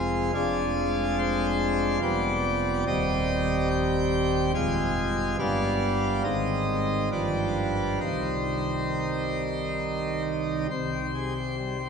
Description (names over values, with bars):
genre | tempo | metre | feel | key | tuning
classical, chorale-style piece for pipe organ | 66-73 BPM | 3/4 | rubato | C minor | A4 = 435 Hz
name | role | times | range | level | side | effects
pipe organ, plenum | solo | 0.0-11.9 s | Eb1 to Ab5 | -24 LUFS | equal | none
room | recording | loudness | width
wet church reverb, RT60 3.9 s | none | -24 LUFS | side -6 dB against mid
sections
0.0-10.7 A section; 10.7-11.9 B section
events
none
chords
0.4 Ddim/F; 2.0 G7/F; 2.9 Cm/Eb; 4.5 Fm; 5.4 G7; 6.2 Ab; 7.1 G7; 8.0 Cm; 10.7 C5